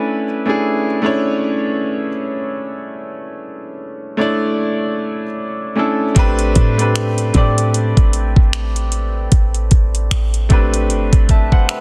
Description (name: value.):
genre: contemporary R&B.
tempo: 76 BPM.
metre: 4/4.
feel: swing 58% on 16ths.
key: unclear.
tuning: A4 = 437 Hz.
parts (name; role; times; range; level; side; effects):
clear baby grand piano; accompaniment; 0.0-11.8 s; A3 to A5; -21 LUFS; equal; none.
clean 808-style bass; bass; 6.2-11.5 s; G1 to A2; -19 LUFS; equal; none.
smooth R&B drum kit; drums; 6.2-11.8 s; finger snaps, hi-hat, kick drum; -15 LUFS; equal; soft clipping on snare.
room: little or no reverb.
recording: dense, heavily limited modern master.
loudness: -16 LUFS.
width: mono.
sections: 0.0-11.8 A section.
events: none.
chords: 0.0 Bm11; 6.2 Am11.